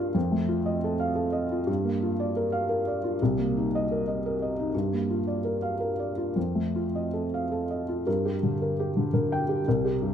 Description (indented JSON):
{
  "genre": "neoclassical minimalist piano",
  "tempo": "103-120 BPM",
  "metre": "3/4",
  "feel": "rubato",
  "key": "G minor",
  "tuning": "A4 = 438 Hz",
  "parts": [
    { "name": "felt-muted upright piano", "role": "solo", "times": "0.0-10.1 s", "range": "C2 to G5", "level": "-25 LUFS", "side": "equal", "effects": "none" }
  ],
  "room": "moderate scoring stage reverb, RT60 1.9 s",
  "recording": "close, detailed microphones",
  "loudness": "-25 LUFS",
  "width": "side -8 dB against mid",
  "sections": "0.0-8.1 A section; 8.1-10.1 B section",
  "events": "none",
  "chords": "0.1 F7; 1.7 Gm7; 3.2 Cm7; 4.7 Gm7; 6.4 F7; 8.1 Gm"
}